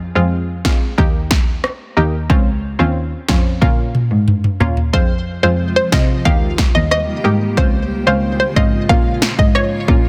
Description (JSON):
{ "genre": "dancehall", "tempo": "91 BPM", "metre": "4/4", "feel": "straight", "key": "F minor", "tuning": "A4 = 441 Hz", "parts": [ { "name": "rich cello", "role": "bass", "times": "0.0-10.1 s", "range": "Db2 to C3", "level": "-21 LUFS", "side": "equal", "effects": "none" }, { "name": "punchy chord stab", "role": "accompaniment", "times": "0.2-10.1 s", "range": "Ab3 to G4", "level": "-24 LUFS", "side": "equal", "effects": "chorus" }, { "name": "deep house drum kit", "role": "drums", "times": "0.6-10.0 s", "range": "kick drum, rim click, snare drum, toms", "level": "-17 LUFS", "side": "equal", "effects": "none" }, { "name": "hollow square pluck", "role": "melody", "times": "4.9-10.0 s", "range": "C5 to F5", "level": "-21 LUFS", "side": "equal", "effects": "chorus, digital delay" }, { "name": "granular cloud pad", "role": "sustained chords", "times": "5.6-10.1 s", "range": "C3 to C5", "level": "-27 LUFS", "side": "equal", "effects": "built-in reverb, sidechain pumping" } ], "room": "digital ambience", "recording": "dense, heavily limited modern master", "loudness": "-16 LUFS", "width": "mono", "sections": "0.0-4.9 A section; 4.9-10.1 B section", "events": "drum fill 3.6-4.9", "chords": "0.0 Fm; 1.0 Eb; 2.3 Dbmaj7; 3.6 Bbm; 4.9 Fm; 6.3 Eb; 7.6 Dbmaj7; 8.9 Bbm" }